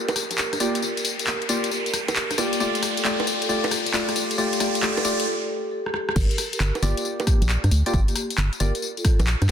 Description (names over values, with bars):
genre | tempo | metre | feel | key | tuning
UK garage, two-step garage | 135 BPM | 4/4 | swing 67% on 16ths | G minor | A4 = 439 Hz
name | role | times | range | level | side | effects
vibraphone with soft mallets | melody | 0.0-9.5 s | Bb3 to Bb4 | -30 LUFS | equal | digital delay
riser | sound effects | 0.0-5.3 s | none | -29 LUFS | right 1 dB | none
house drum kit | drums | 0.1-9.5 s | bongos, crash cymbal, handclaps, hi-hat, rim click, tambourine | -26 LUFS | left 1 dB | none
organ-like FM bass | bass | 0.3-9.5 s | D1 to G2 | -22 LUFS | equal | high-pass filter
percussive organ stab | stabs | 0.6-8.7 s | A3 to D5 | -27 LUFS | left 1 dB | lush chorus
electronic kick drum | drums | 6.2-9.2 s | none | -20 LUFS | equal | none
room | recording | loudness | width
moderate plate reverb, RT60 1.9 s, digital ambience | dense, heavily limited modern master | -20 LUFS | side -9 dB against mid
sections
0.0-6.2 A section; 6.2-9.5 B section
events
build-up 0.0-6.2; riser 0.0-5.3; break 5.3-6.2; drum fill 5.8-6.2; drop 6.2-9.5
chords
0.0 Gm7; 2.6 Dm; 6.2 Gm7